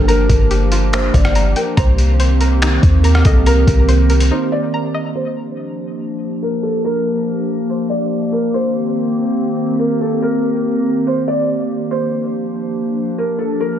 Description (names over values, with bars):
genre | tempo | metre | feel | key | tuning
hip hop, atmospheric cloud-rap | 142 BPM | 4/4 | half-time | G minor | A4 = 440 Hz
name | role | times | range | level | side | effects
felt-muted upright piano | melody | 0.0-13.8 s | A4 to D5 | -22 LUFS | equal | analog chorus, low-pass filter, diffuse ambient delay
warbly tape-like pad | sustained chords | 0.0-13.8 s | Eb3 to G4 | -18 LUFS | equal | chorus, built-in reverb, sidechain pumping, low-pass filter
string-like resonator pluck | arpeggios | 0.0-5.2 s | Bb3 to Bb5 | -26 LUFS | left 2 dB | chorus, low-pass filter, diffuse ambient delay
clean 808-style bass | bass | 0.0-4.3 s | G1 to Eb2 | -13 LUFS | equal | none
trip hop sampler-style drum kit | drums | 0.1-4.3 s | finger snaps, hi-hat, kick drum, rim click | -17 LUFS | equal | overdrive
room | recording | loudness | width
light reverb | none | -14 LUFS | side -10 dB against mid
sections
0.0-5.2 A section; 5.2-13.8 B section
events
break 4.3-5.2; filter sweep 5.2-13.8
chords
0.0 Gm7; 1.8 Cm7; 5.2 Gm7; 8.5 Cm7; 11.9 Gm7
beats
| 0.08 0.51 0.93 1.35 | 1.77 2.20 2.62 3.04 | 3.46 3.89 4.31 4.73 | 5.15 5.58 6.00 6.42 | 6.84 7.27 7.69 8.11 | 8.53 8.96 9.38 9.80 | 10.22 10.65 11.07 11.49 | 11.91 12.34 12.76 13.18 | 13.60